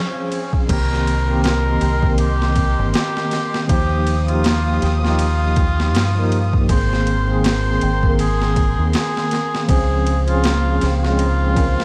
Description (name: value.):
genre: trip hop.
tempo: 80 BPM.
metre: 4/4.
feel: swing 57% on 16ths.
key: C phrygian.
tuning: A4 = 439 Hz.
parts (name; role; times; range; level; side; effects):
trumpet with cup mute; melody; 0.0-11.8 s; Db4 to C5; -26 LUFS; equal; dub echo.
bright tine electric piano; accompaniment; 0.0-11.8 s; Eb3 to C5; -25 LUFS; equal; tremolo.
muted studio string section; sustained chords; 0.0-11.8 s; G4 to Eb6; -33 LUFS; equal; none.
swell; sound effects; 0.1-0.7 s; none; -35 LUFS; equal; none.
boom bap sampler-style drum kit; drums; 0.3-11.8 s; crash cymbal, kick drum, ride cymbal, snare drum; -24 LUFS; equal; overdrive, vintage 12-bit sampler grit.
Celtic harp; arpeggios; 0.7-11.8 s; Bb3 to G5; -34 LUFS; equal; none.
deep dub fingered electric bass; bass; 0.7-11.7 s; G1 to G2; -21 LUFS; equal; none.
room: little or no reverb.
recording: vinyl crackle.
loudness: -18 LUFS.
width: mono.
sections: 0.7-11.8 A section.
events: swell 0.1-0.7.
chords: 0.0 Dbmaj7; 0.7 Cm7; 3.7 Ebadd9; 6.7 Abadd9; 9.7 Dbmaj7.